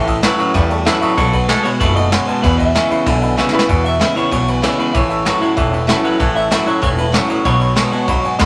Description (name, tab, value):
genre	rockabilly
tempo	191 BPM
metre	4/4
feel	straight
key	E major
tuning	A4 = 440 Hz
part	electric guitar through a small old amp	melody	0.0-8.4 s	A4 to E5	-24 LUFS	equal	none
part	picked steel-string acoustic guitar	accompaniment	0.0-8.5 s	E2 to F#4	-24 LUFS	equal	none
part	twangy electric guitar	riff	0.0-8.5 s	E2 to A3	-20 LUFS	equal	none
part	upright bass	bass	0.0-8.5 s	E1 to E2	-22 LUFS	equal	none
part	warm upright piano	accompaniment	0.1-8.5 s	D#5 to E6	-26 LUFS	equal	none
part	soft brush drum kit	drums	0.1-8.5 s	kick drum, ride cymbal, snare drum	-22 LUFS	equal	none
room	moderate studio reverb, RT60 0.9 s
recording	none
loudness	-15 LUFS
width	mono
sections	0.0-3.7 A section; 3.7-8.5 B section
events	drum fill 3.4-3.7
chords	0.0 A; 1.2 B7; 2.4 E; 4.9 A; 7.4 B7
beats	0.23 0.55 0.86 | 1.18 1.49 1.81 2.12 | 2.43 2.75 3.06 3.38 | 3.69 4.00 4.32 4.63 | 4.94 5.26 5.57 5.88 | 6.20 6.51 6.82 7.14 | 7.45 7.76 8.07 8.39